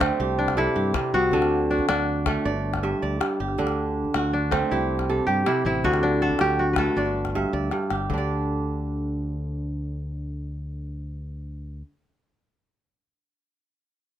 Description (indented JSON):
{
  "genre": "west african traditional, West African string and xylophone music",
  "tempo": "106 BPM (dotted quarters)",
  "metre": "12/8",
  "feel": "straight",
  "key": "D mixolydian",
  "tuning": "A4 = 437 Hz",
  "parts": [
    { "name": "kora", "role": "melody", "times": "0.0-8.6 s", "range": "C4 to B4", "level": "-24 LUFS", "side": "left 1 dB", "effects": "none" },
    { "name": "kora", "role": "arpeggios", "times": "0.0-11.9 s", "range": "G2 to E5", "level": "-26 LUFS", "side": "right 2 dB", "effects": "none" },
    { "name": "fingered electric bass", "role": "bass", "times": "0.0-11.8 s", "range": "G1 to G2", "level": "-29 LUFS", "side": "equal", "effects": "none" },
    { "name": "calabash", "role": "percussion", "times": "0.0-8.3 s", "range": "none", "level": "-30 LUFS", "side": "left 5 dB", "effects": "none" }
  ],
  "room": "light reverb",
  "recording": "none",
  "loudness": "-22 LUFS",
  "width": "side -11 dB against mid",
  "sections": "0.0-8.1 A section; 8.1-10.4 B section",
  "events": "drum fill 7.3-8.1",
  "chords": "0.2 C; 1.3 D; 2.4 G5; 3.6 D; 4.7 C; 5.8 D; 7.0 G5; 8.1 Dsus4"
}